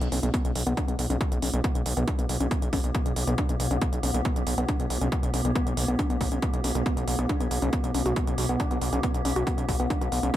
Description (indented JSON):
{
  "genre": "driving peak-time techno",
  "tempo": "138 BPM",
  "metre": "4/4",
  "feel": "straight",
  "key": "B minor",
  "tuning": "A4 = 440 Hz",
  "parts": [
    { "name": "gritty driven synth bass", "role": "bass", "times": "0.0-10.3 s", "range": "B1", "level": "-28 LUFS", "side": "equal", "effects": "sidechain pumping" },
    { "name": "metallic inharmonic drone", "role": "drone", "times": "0.9-10.4 s", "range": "B2", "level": "-34 LUFS", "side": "equal", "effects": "chorus, built-in reverb, phaser, sidechain pumping" },
    { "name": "electronic hi-hat", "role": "drums", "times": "0.0-10.4 s", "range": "none", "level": "-35 LUFS", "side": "right 3 dB", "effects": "sidechain pumping on hats" },
    { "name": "woody wave-folded pluck", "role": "riff", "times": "0.1-10.4 s", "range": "B3 to F#4", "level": "-30 LUFS", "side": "left 1 dB", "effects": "chorus, cassette tape, sidechain pumping, tape echo" },
    { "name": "electronic kick drum", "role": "drums", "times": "0.3-10.4 s", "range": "none", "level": "-28 LUFS", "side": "equal", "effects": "none" }
  ],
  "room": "light reverb, digital ambience",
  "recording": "none",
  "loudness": "-24 LUFS",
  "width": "side -13 dB against mid",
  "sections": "0.0-10.4 A section",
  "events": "filter sweep on synth arpeggio sound 0.0-10.4",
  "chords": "none"
}